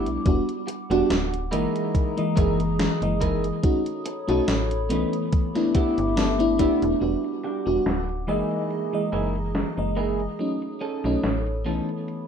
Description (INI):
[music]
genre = vaporwave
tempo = 71 BPM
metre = 4/4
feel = swing 54% on 16ths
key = unclear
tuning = A4 = 439 Hz
[part]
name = FM electric piano with soft pad layer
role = accompaniment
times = 0.0-12.3 s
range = E3 to D#5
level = -24 LUFS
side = equal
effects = tremolo, lush chorus, tape echo
[part]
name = warbly tape-like pad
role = sustained chords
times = 0.0-12.3 s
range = G3 to D#6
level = -33 LUFS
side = left 1 dB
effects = chorus, built-in reverb
[part]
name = electric guitar at the edge of break-up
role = riff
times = 0.0-11.9 s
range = A#3 to B4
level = -31 LUFS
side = right 4 dB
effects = analog chorus, low-pass filter, tape echo
[part]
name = slap-like FM bass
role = bass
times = 0.0-11.8 s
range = D1 to B1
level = -28 LUFS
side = equal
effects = none
[part]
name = gated 80s digital drum machine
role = drums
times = 0.1-12.3 s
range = hi-hat, snare drum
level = -28 LUFS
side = equal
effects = gated reverb, gated reverb snare, low-pass filter on hats, vintage 12-bit sampler grit, low-pass filter on snare, low-pass filter on room
[part]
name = electronic kick drum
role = drums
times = 0.3-6.8 s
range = none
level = -22 LUFS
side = equal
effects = vintage 12-bit sampler grit
[sound]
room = light reverb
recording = rough home demo mix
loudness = -22 LUFS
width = side -7 dB against mid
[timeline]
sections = 0.0-7.0 A section; 7.0-12.3 B section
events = band accent 6.2-6.6; filter sweep on clean electric guitar 7.0-12.3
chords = 0.3 Em9; 1.5 F#13; 3.6 B9; 5.3 G6; 7.0 Em9; 8.3 F#13; 10.4 B9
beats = | 0.26 1.10 1.95 2.79 | 3.64 4.48 5.33 6.17 | 7.02 7.86 8.71 9.55 | 10.40 11.24 12.09